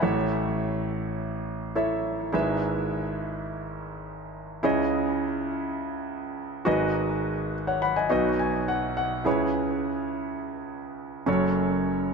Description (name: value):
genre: pop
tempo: 104 BPM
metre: 4/4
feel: straight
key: unclear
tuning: A4 = 440 Hz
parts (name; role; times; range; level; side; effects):
- warm concert grand piano; solo; 0.0-12.1 s; F#1 to B5; -25 LUFS; right 1 dB; digital delay
room: moderate lush hall reverb, RT60 2.5 s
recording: none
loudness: -25 LUFS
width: side -4 dB against mid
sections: 0.0-9.3 A section; 9.3-12.1 B section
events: grand piano fill 8.1-9.3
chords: 0.0 A; 2.3 E/G#; 4.6 C#madd9; 6.7 G#m7; 8.1 B; 9.3 C#m7; 11.3 F#m